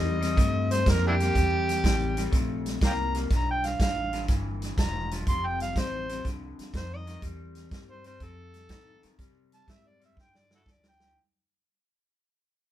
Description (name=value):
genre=electric blues shuffle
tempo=122 BPM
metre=4/4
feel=swing 68% on 8ths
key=C mixolydian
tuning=A4 = 440 Hz
part: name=overdriven harmonica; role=melody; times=0.0-11.2 s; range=D4 to C6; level=-30 LUFS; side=right 1 dB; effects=none
part: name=electric guitar through a small old amp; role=riff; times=0.0-11.1 s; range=F2 to Bb3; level=-34 LUFS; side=left 5 dB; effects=none
part: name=upright bass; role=bass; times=0.0-11.1 s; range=E1 to C3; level=-31 LUFS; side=equal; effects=none
part: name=vintage drum kit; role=drums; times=0.2-11.1 s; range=hi-hat, kick drum, snare drum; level=-28 LUFS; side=right 1 dB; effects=none
room=light reverb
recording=band playing live in one room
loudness=-24 LUFS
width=side -12 dB against mid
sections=0.0-11.2 A section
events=fade-out 0.0-11.2; drum fill 10.2-11.2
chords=0.0 C7; 3.3 G7; 5.3 F7; 7.2 C; 8.2 F7; 9.2 C5; 10.2 G5